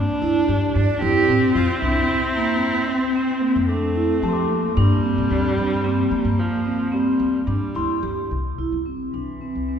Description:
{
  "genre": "contemporary instrumental, chamber music in an uneven meter",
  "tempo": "112 BPM",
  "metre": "7/4",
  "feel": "straight",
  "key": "unclear",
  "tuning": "A4 = 440 Hz",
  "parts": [
    { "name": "rich cello", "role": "melody", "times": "0.0-9.8 s", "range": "E3 to G4", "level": "-25 LUFS", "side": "right 2 dB", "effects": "none" },
    { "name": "warm viola", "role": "second line", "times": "0.0-8.3 s", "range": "F3 to D4", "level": "-25 LUFS", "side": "equal", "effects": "none" },
    { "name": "vibraphone with medium hard mallets", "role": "arpeggios", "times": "0.0-9.8 s", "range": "Bb3 to G4", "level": "-23 LUFS", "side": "right 1 dB", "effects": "none" },
    { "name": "upright bass", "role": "bass", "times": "0.0-9.8 s", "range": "C2 to G3", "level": "-24 LUFS", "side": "left 1 dB", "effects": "none" },
    { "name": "glockenspiel with rubber mallets", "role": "texture", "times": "4.2-8.6 s", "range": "A5 to D6", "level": "-32 LUFS", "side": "left 4 dB", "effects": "none" }
  ],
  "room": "wet church reverb, RT60 3.5 s",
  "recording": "recorded in a church or concert hall",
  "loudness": "-18 LUFS",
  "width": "side -8 dB against mid",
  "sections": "0.0-8.6 A section; 8.6-9.8 B section",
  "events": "none",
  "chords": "0.0 Gm; 1.0 Fmaj7; 4.8 Gm; 8.6 C"
}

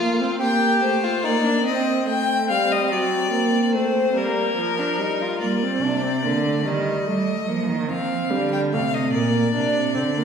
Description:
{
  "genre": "classical, baroque-style fugue for string quartet",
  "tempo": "48 BPM (dotted quarters)",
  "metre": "6/8",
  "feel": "straight",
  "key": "G minor",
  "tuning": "A4 = 440 Hz",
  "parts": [
    { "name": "warm violin", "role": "second line", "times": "0.0-5.4 s", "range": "Bb3 to G4", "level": "-25 LUFS", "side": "equal", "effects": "none" },
    { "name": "warm viola", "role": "accompaniment", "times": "0.0-10.2 s", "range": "F3 to D4", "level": "-23 LUFS", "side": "right 2 dB", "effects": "none" },
    { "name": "clear violin", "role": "melody", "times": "0.4-10.2 s", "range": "Bb4 to G5", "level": "-24 LUFS", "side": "left 5 dB", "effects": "none" },
    { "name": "rich cello", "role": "bass", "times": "5.4-10.2 s", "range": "Bb2 to G3", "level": "-24 LUFS", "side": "right 3 dB", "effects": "none" }
  ],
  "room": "wet scoring stage reverb, RT60 1.5 s",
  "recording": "minimal, uncompressed stereo recording",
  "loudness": "-19 LUFS",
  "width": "side -6 dB against mid",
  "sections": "0.0-5.4 A section; 5.4-10.2 B section",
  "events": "none",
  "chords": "0.4 Gm; 1.7 Cm; 2.9 D7/F#; 4.2 Gm; 6.7 Ebadd9; 7.9 F; 9.1 Bb"
}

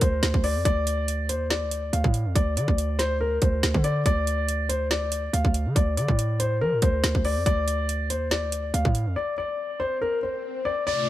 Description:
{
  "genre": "hip hop, drill",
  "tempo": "141 BPM",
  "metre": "4/4",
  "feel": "half-time",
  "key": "D phrygian",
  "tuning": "A4 = 440 Hz",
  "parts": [
    { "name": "dark concert grand piano", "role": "melody", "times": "0.0-11.1 s", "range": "Bb4 to F5", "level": "-27 LUFS", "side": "left 3 dB", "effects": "tape echo" },
    { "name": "hard-hitting 808-style bass", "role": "bass", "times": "0.0-9.2 s", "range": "D2 to F3", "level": "-25 LUFS", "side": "right 1 dB", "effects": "none" },
    { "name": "drill drum kit", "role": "drums", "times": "0.0-9.1 s", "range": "hi-hat, kick drum, snare drum", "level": "-25 LUFS", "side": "right 1 dB", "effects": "overdrive" },
    { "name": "swell and downlifter", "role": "sound effects", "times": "9.8-11.1 s", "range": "none", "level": "-35 LUFS", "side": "left 3 dB", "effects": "none" },
    { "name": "dark analog pad", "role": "sustained chords", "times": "10.9-11.1 s", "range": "C3 to F4", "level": "-31 LUFS", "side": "equal", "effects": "chorus" }
  ],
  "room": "light reverb",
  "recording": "none",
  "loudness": "-22 LUFS",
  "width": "side -14 dB against mid",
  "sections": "0.0-10.9 A section",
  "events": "break 9.2-10.9; swell 9.8-10.9",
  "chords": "0.0 D7(no3)"
}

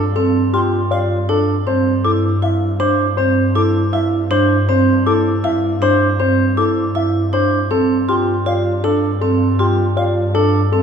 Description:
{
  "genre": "classical, minimalist pattern music",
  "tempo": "159 BPM",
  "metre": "4/4",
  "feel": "straight",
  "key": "unclear",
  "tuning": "A4 = 441 Hz",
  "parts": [
    { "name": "warm grand piano", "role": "melody", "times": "0.0-10.8 s", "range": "G4 to F5", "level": "-19 LUFS", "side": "left 6 dB", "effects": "none" },
    { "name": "vibraphone with medium hard mallets", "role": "arpeggios", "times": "0.0-10.8 s", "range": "C4 to F4", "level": "-18 LUFS", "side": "right 5 dB", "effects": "none" },
    { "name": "clear chamber double bass section", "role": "bass", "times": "0.0-10.8 s", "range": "G2", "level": "-19 LUFS", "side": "equal", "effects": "none" },
    { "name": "mellow hollow silver concert flute", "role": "arpeggios", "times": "0.5-10.0 s", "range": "E5 to D6", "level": "-26 LUFS", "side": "left 2 dB", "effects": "none" }
  ],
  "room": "wet church reverb, RT60 2.8 s",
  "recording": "recorded in a church or concert hall",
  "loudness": "-14 LUFS",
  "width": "side -7 dB against mid",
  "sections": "0.0-10.8 A section",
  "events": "none",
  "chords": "0.0 Gsus2; 1.7 Dsus2/G; 7.7 Gsus2"
}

